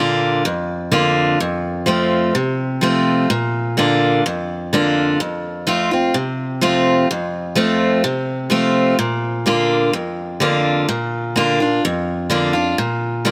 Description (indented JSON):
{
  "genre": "country",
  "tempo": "127 BPM",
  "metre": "4/4",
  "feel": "straight",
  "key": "Bb major",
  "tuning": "A4 = 440 Hz",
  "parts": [
    { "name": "picked steel-string acoustic guitar", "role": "solo", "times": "0.0-13.3 s", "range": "F2 to F4", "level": "-18 LUFS", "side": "equal", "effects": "none" }
  ],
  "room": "light reverb",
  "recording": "none",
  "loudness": "-18 LUFS",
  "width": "mono",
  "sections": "0.0-10.9 A section; 10.9-13.3 A section",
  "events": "none",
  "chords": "0.0 Bb; 1.4 F; 3.3 Bb; 5.2 F; 9.0 Bb"
}